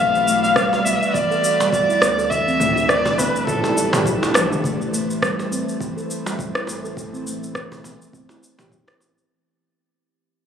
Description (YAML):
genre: organic downtempo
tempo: 103 BPM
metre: 4/4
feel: swing 56% on 16ths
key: A minor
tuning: A4 = 440 Hz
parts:
  - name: dark kamancheh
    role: melody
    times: 0.0-4.0 s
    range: A4 to F5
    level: -19 LUFS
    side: equal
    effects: ping-pong delay
  - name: warm analog pad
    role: sustained chords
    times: 0.0-9.3 s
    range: D3 to D5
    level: -30 LUFS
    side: equal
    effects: chorus, sidechain pumping
  - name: steel tongue drum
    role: arpeggios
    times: 0.0-9.3 s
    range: E3 to A4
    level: -24 LUFS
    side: equal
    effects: low-pass filter, ping-pong delay
  - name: warm sub bass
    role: bass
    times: 0.0-9.2 s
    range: E1 to D2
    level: -34 LUFS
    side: left 1 dB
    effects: none
  - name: organic electronic drum kit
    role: drums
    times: 0.2-9.3 s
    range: cabasa, rim click, toms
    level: -23 LUFS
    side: equal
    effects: none
  - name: electronic kick drum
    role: drums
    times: 0.6-8.8 s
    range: none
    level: -30 LUFS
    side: equal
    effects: overdrive
  - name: cajon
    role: percussion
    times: 0.7-9.1 s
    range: none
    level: -27 LUFS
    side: right 2 dB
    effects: none
room: moderate huge ambient reverb, RT60 4.0 s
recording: recorded on a phone in the room, club reverb, compression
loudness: -17 LUFS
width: side -8 dB against mid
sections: 0.0-4.6 A section; 4.6-9.3 B section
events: drum fill 4.3; fade-out 4.6-9.3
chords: 0.0 Bm7b5; 2.3 D5; 3.5 G; 4.6 Am